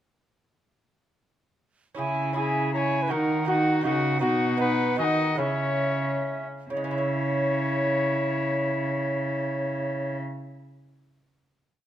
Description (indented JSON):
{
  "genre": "classical, renaissance-style consort dance",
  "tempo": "128-162 BPM",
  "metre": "3/4",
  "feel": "straight",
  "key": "C# dorian",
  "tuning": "A4 = 440 Hz",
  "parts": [
    { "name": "lute", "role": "accompaniment", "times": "1.9-10.4 s", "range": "B2 to C#5", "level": "-31 LUFS", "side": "right 4 dB", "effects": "none" },
    { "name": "clear cornet", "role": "melody", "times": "2.0-10.2 s", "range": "E4 to D#5", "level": "-30 LUFS", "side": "left 4 dB", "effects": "none" },
    { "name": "alto recorder", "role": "second line", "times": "2.0-10.2 s", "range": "C#5 to A#5", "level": "-30 LUFS", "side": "right 2 dB", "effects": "none" },
    { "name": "rich viola", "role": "accompaniment", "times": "2.0-10.2 s", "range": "C#4 to E4", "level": "-31 LUFS", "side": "left 3 dB", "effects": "none" },
    { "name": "warm cello", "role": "bass", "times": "2.0-10.2 s", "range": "B2 to D#3", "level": "-29 LUFS", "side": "right 2 dB", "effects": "none" }
  ],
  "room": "moderate stone room reverb, RT60 1.4 s",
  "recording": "close, detailed microphones",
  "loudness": "-23 LUFS",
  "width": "side -11 dB against mid",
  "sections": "2.0-6.7 A section; 6.7-9.5 final chord",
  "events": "slowing down 3.7-6.7",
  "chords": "2.0 C#m; 3.1 D#m; 4.2 B; 5.4 C#m"
}